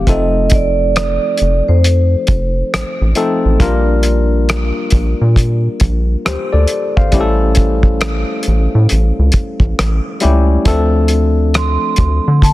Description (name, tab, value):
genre	R&B, neo-soul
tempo	68 BPM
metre	4/4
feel	swing 62% on 16ths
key	F major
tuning	A4 = 439 Hz
part	vibraphone with medium mallets	melody	0.0-3.0, 11.6-12.5 s	C5 to C6	-18 LUFS	moving between left 4 dB and right 9 dB	auto-pan, slapback echo
part	barky tine electric piano	accompaniment	0.0-12.5 s	F3 to F5	-18 LUFS	left 3 dB	none
part	rubbery square bass	bass	0.0-12.5 s	F1 to D3	-13 LUFS	equal	none
part	cloth-damped thuddy drum kit	drums	0.1-12.5 s	hi-hat, kick drum, rim click	-15 LUFS	equal	soft clipping on snare
room	little or no reverb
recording	dense, heavily limited modern master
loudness	-11 LUFS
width	side -16 dB against mid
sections	0.0-12.5 A section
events	none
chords	0.1 F7; 3.6 Bb6; 7.1 A7; 10.7 Dm7